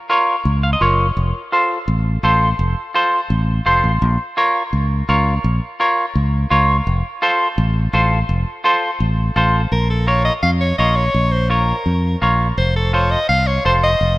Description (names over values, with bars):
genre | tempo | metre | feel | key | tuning
latin | 168 BPM | 4/4 | straight | Bb harmonic minor | A4 = 441 Hz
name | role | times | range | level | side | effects
semi-hollow electric guitar | accompaniment | 0.1-13.9 s | F4 to F5 | -18 LUFS | equal | none
fingered electric bass | bass | 0.5-14.2 s | F1 to F2 | -17 LUFS | equal | none
edgy soprano saxophone | melody | 9.7-14.2 s | A4 to F5 | -19 LUFS | equal | none
room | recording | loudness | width
moderate lush hall reverb, RT60 2.8 s | rough home demo mix | -14 LUFS | side -19 dB against mid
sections
0.0-9.7 A section; 9.7-14.2 B section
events
clean electric guitar fill 0.5-1.2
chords
0.0 Bbm; 1.2 F; 4.0 Bbm; 6.9 F; 9.7 Bbm; 12.6 F7